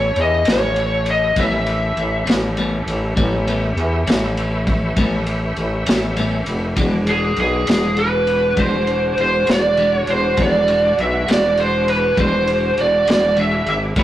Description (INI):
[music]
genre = slow blues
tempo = 67 BPM (dotted quarters)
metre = 12/8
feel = straight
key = unclear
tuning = A4 = 440 Hz
[part]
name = lead guitar through a small cranked amp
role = melody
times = 0.0-14.0 s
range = G#4 to E5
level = -17 LUFS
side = right 1 dB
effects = overdrive
[part]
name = clean electric guitar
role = accompaniment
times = 0.0-14.0 s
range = A2 to B4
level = -25 LUFS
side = left 2 dB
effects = tremolo
[part]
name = tonewheel organ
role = sustained chords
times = 0.0-14.0 s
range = C#4 to E5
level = -29 LUFS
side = equal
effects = chorus vibrato, fast rotary speaker
[part]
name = growling FM bass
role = bass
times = 0.0-14.0 s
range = E1 to E2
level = -21 LUFS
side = equal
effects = none
[part]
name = crunchy breakbeat drum kit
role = drums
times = 0.2-14.0 s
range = kick drum, ride cymbal, snare drum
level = -22 LUFS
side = equal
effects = none
[part]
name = warm saxophone section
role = sustained chords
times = 6.8-14.0 s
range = G#3 to G4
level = -30 LUFS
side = equal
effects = none
[sound]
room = moderate stone room reverb, RT60 0.9 s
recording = rough rehearsal-room recording, warm saturation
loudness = -15 LUFS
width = side -13 dB against mid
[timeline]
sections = 0.0-14.0 A section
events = none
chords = 0.0 A9; 6.8 E9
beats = 0.45 1.36 2.26 | 3.16 4.07 4.97 5.87 | 6.77 7.67 8.57 9.47 | 10.37 11.27 12.16 13.06 | 13.96